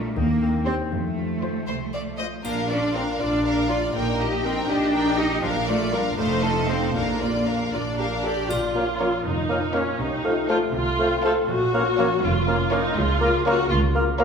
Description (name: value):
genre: cinematic, playful, whimsical film cue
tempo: 80 BPM (dotted quarters)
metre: 6/8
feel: straight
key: Bb major, Bb minor from 8.5 s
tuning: A4 = 440 Hz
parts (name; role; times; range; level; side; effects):
- rich studio violin section; melody; 0.0-14.2 s; C5 to G5; -32 LUFS; left 4 dB; none
- rich studio violin section; second line; 0.0-14.2 s; G4 to Eb5; -29 LUFS; equal; none
- rich studio viola section; accompaniment; 0.0-13.8 s; Db4 to A4; -27 LUFS; equal; none
- concert harp; arpeggios; 0.0-14.2 s; F2 to C6; -30 LUFS; left 3 dB; none
- rich studio cello section; bass; 0.0-14.2 s; Db2 to F4; -27 LUFS; right 1 dB; none
- warm chamber double bass section; bass; 0.2-14.2 s; F1 to F2; -29 LUFS; right 2 dB; none
- triangle; percussion; 2.4-3.4, 8.5-9.5 s; none; -40 LUFS; left 2 dB; none
- clear French horn section; sustained chords; 8.7-14.2 s; A3 to F4; -30 LUFS; left 3 dB; none
- dark clarinet; second line; 8.8-14.2 s; Bb4 to Db5; -31 LUFS; left 2 dB; none
- dark cor anglais; second line; 8.8-14.2 s; F5; -30 LUFS; right 2 dB; none
- mellow bassoon; accompaniment; 8.8-14.2 s; A3 to Bb3; -28 LUFS; right 1 dB; none
room: wet scoring stage reverb, RT60 1.8 s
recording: minimal, uncompressed stereo recording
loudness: -20 LUFS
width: side -6 dB against mid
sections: 0.0-8.5 A section; 8.5-14.2 B section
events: none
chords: 0.2 Cm/Eb; 0.9 F; 2.4 Bb; 3.9 Eb/Bb; 5.4 Bb; 6.2 F7; 6.9 Bb; 8.5 Bbm; 10.0 F7/C; 11.5 Bbm; 13.0 Bbm/Db